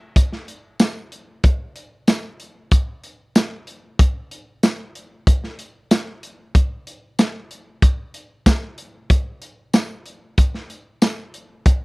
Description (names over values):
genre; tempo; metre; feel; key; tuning
blues; 94 BPM; 4/4; straight; none; none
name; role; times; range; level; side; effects
crunchy breakbeat drum kit; drums; 0.2-11.8 s; hi-hat, kick drum, snare drum, tambourine; -16 LUFS; equal; none
room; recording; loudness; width
little or no reverb; dry, close 1970s-style studio recording; -18 LUFS; side -26 dB against mid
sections
0.0-11.8 A section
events
none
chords
none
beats
0.16 0.80 | 1.44 2.08 2.72 3.35 | 3.99 4.63 5.27 5.91 | 6.55 7.19 7.83 8.47 | 9.11 9.74 10.38 11.02 | 11.66